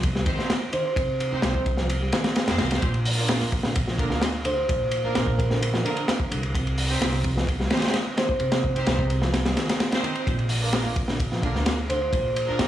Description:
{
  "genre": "breakbeat, breaks",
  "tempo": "129 BPM",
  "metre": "4/4",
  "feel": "straight",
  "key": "C minor",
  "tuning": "A4 = 440 Hz",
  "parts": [
    { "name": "picked electric bass", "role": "riff", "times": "0.0-12.6 s", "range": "Bb2 to G3", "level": "-31 LUFS", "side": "equal", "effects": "tube saturation, tape echo" },
    { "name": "upright bass", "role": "bass", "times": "0.0-12.7 s", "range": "Bb1 to F2", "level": "-28 LUFS", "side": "equal", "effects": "tube saturation" },
    { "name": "crunchy breakbeat drum kit", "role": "drums", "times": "0.0-12.7 s", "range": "hi-hat, kick drum, ride cymbal, snare drum", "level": "-25 LUFS", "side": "equal", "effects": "none" },
    { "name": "rich chamber string section", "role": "stabs", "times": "0.3-12.7 s", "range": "Bb3 to C5", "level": "-31 LUFS", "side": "right 3 dB", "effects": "vintage 12-bit sampler grit, tape echo" },
    { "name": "kalimba", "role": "melody", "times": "0.7-0.9, 4.5-8.4, 11.9-12.1 s", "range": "Bb4 to C5", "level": "-30 LUFS", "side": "right 1 dB", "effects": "old record sound, tape echo" }
  ],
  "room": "light reverb",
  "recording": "dry, gritty hardware recording, small room ambience",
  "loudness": "-22 LUFS",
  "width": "side -12 dB against mid",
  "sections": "0.0-12.7 A section",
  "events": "none",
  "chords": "0.0 Cm; 2.8 Bb; 6.5 Cm; 10.3 Bb"
}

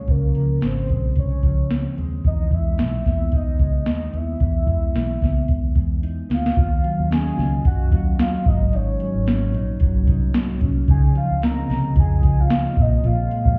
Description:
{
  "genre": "indie pop, bedroom pop",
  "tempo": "111 BPM",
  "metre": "4/4",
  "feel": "swing 55% on 16ths",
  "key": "Db major",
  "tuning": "A4 = 440 Hz",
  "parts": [
    { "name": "soft octave-layered synth lead", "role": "melody", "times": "0.0-13.6 s", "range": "Bb4 to Bb5", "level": "-32 LUFS", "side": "equal", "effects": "tremolo, analog chorus, tape echo" },
    { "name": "mellow electric guitar", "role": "accompaniment", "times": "0.0-13.6 s", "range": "Ab2 to F4", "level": "-27 LUFS", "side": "equal", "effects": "lush chorus, warbly pitch drift" },
    { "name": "vintage muted fingered electric bass", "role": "bass", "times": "0.0-13.6 s", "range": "Ab1 to Gb2", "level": "-25 LUFS", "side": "equal", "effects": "none" },
    { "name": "soft vintage rhythm box", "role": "drums", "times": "0.1-13.6 s", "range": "hi-hat, kick drum, snare drum", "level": "-23 LUFS", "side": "equal", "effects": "overdrive" },
    { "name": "warbly tape-like pad", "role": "sustained chords", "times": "7.2-13.6 s", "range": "Db3 to Eb5", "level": "-35 LUFS", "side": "equal", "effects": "chorus, built-in reverb" }
  ],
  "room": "digital ambience",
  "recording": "heard muffled through a wall, club reverb, EQ, nothing above 7.9 kHz",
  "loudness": "-20 LUFS",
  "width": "mono",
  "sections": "0.0-6.6 A section; 6.6-13.6 B section",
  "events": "drum fill 6.0-6.6",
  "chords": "0.0 Dbmaj7; 2.2 Emaj7; 6.6 Ebm9; 8.5 Ab7sus4; 10.9 Dbmaj9; 12.8 Bbm11"
}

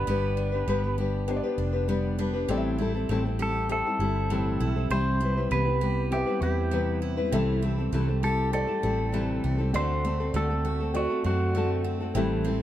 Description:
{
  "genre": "acoustic pop",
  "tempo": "99 BPM",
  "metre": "4/4",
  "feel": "straight",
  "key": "A dorian",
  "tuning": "A4 = 440 Hz",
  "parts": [
    { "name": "clean lap steel guitar", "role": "melody", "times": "0.0-11.8 s", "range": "F#4 to C5", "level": "-30 LUFS", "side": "right 1 dB", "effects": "none" },
    { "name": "felt-muted upright piano", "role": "accompaniment", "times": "0.0-12.6 s", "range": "B3 to B5", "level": "-36 LUFS", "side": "left 3 dB", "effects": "none" },
    { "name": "nylon-string guitar", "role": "accompaniment", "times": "0.0-12.6 s", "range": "A2 to B4", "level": "-29 LUFS", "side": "left 4 dB", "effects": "none" },
    { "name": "picked steel-string acoustic guitar", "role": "arpeggios", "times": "0.0-12.6 s", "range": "E3 to G4", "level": "-35 LUFS", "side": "right 6 dB", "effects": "none" },
    { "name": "vintage muted fingered electric bass", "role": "bass", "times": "0.0-12.6 s", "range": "F1 to F#2", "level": "-28 LUFS", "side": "right 1 dB", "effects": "none" }
  ],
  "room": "light reverb",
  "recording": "dark, warm production",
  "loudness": "-24 LUFS",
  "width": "side -12 dB against mid",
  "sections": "0.0-2.5 A section; 2.5-12.6 B section",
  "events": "none",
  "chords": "0.0 G; 2.5 Am7; 4.9 Cmaj7; 7.3 Am7/C; 9.7 D7"
}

